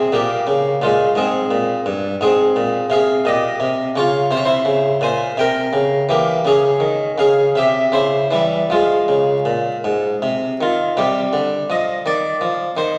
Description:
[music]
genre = classical, baroque-style suite movement for harpsichord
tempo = 51-58 BPM (dotted quarters)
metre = 6/8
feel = rubato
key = F minor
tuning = A4 = 442 Hz
[part]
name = harpsichord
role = solo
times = 0.0-13.0 s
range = G2 to Ab5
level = -17 LUFS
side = equal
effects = none
[sound]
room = wet scoring stage reverb, RT60 1.5 s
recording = vinyl crackle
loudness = -17 LUFS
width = mono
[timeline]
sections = 0.0-11.0 A section; 11.0-13.0 A section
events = none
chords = 0.1 Gdim/Bb; 1.2 Ab; 2.2 Ab69; 3.3 Gm7b5/Bb; 4.3 C; 5.4 C7; 6.4 Db5; 7.5 C; 8.7 Fm; 11.0 Cm

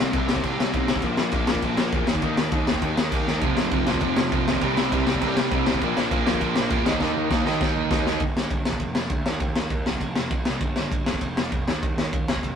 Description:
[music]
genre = punk rock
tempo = 201 BPM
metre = 4/4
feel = straight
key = unclear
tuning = A4 = 440 Hz
[part]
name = high-gain distorted guitar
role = riff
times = 0.0-8.2 s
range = F2 to Eb4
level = -32 LUFS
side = equal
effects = distortion
[part]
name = overdriven semi-hollow guitar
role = riff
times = 0.0-8.2 s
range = F2 to Eb4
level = -28 LUFS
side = left 4 dB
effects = none
[part]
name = fuzz picked electric bass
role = bass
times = 0.0-12.6 s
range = E1 to F2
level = -30 LUFS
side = right 1 dB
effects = overdrive
[part]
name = raw garage drum kit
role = drums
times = 0.1-12.5 s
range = crash cymbal, kick drum, ride cymbal, snare drum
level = -23 LUFS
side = equal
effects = none
[part]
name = crunchy overdriven guitar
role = riff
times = 3.4-8.2 s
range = F2 to Eb4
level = -27 LUFS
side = right 6 dB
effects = none
[sound]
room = light reverb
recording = rough rehearsal-room recording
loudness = -21 LUFS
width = side -7 dB against mid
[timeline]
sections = 0.0-8.2 A section; 8.2-12.6 B section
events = drum fill 3.3, 7.0-8.2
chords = 0.0 C5; 1.0 Bb5; 2.1 Eb5; 3.4 F5; 4.6 C5; 5.8 Bb5; 6.9 Eb5; 8.2 Em; 8.8 Dm/F; 9.3 N.C.; 9.9 F; 10.6 Fsus2/G; 11.2 N.C.

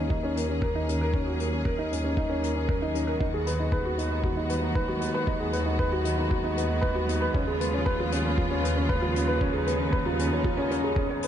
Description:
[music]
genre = piano and strings electronica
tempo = 116 BPM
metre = 4/4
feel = straight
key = unclear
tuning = A4 = 444 Hz
[part]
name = clear symphonic string section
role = sustained chords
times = 0.0-11.3 s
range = Db3 to Ab4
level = -33 LUFS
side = right 1 dB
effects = sidechain pumping
[part]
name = dark upright piano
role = riff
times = 0.0-11.3 s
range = Db4 to Db5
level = -28 LUFS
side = equal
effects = tape echo
[part]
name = muted symphonic double bass section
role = bass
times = 0.0-11.3 s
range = Eb2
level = -30 LUFS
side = equal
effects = sidechain pumping
[part]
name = electronic kick drum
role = drums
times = 0.1-11.1 s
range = none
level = -29 LUFS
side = equal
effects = overdrive
[part]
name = hi-hat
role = drums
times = 0.4-11.3 s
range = none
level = -39 LUFS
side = left 6 dB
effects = none
[sound]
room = moderate lush hall reverb, RT60 1.8 s, small room ambience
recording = dreamy mix soaked in reverb, nothing above 10.4 kHz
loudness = -24 LUFS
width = side -10 dB against mid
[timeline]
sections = 0.0-11.3 A section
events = fade-in on string section 0.0-11.3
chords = 0.0 Ebm7; 3.2 Abm7/Eb; 7.3 Db7/Eb

